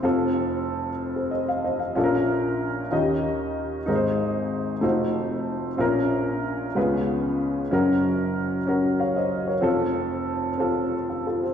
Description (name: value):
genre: gospel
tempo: 62 BPM (dotted quarters)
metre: 6/8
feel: straight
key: unclear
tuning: A4 = 442 Hz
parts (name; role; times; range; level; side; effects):
- warm upright piano; solo; 0.0-11.5 s; F1 to F5; -22 LUFS; left 1 dB; none
room: wet recital hall reverb, RT60 1.5 s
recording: recorded in a church or concert hall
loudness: -22 LUFS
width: side -8 dB against mid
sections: 0.0-11.5 A section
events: none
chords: 0.0 F; 2.0 Bbm; 2.9 Eb7; 3.9 Ab; 4.8 F7b9; 5.8 Bbm; 6.8 Db7; 7.7 Gb; 9.7 F